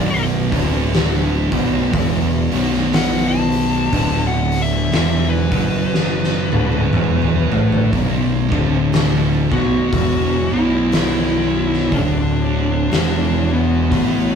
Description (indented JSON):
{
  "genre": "stoner and doom metal",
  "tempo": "60 BPM",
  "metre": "4/4",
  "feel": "swing 59% on 8ths",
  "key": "B minor",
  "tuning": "A4 = 441 Hz",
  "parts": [
    { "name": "fuzz lead guitar", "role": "melody", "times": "0.0-14.4 s", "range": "B3 to A5", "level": "-22 LUFS", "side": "left 3 dB", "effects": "distortion" },
    { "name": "analog drone", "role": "sustained chords", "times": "0.0-14.4 s", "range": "F#3 to D5", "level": "-30 LUFS", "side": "right 1 dB", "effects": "none" },
    { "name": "thick fuzz guitar", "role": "riff", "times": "0.0-14.4 s", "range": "B1 to A3", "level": "-23 LUFS", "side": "left 6 dB", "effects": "distortion" },
    { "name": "thick fuzz guitar", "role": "riff", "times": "0.0-14.4 s", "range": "B1 to A3", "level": "-21 LUFS", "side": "right 8 dB", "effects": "distortion" },
    { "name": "fuzz fingered electric bass", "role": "bass", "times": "0.0-14.4 s", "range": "B0 to A1", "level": "-21 LUFS", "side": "equal", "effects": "overdrive, tube saturation" },
    { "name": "oversized low-tuned drum kit", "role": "drums", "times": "0.5-14.2 s", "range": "hi-hat, kick drum, snare drum, toms", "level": "-21 LUFS", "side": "left 1 dB", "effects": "none" }
  ],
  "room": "light reverb",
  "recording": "rough rehearsal-room recording",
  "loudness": "-15 LUFS",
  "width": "side -7 dB against mid",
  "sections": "0.0-7.9 A section; 7.9-14.4 B section",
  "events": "lead electric guitar solo 0.0-7.9; drum fill 5.9-7.9",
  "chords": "0.0 Bm"
}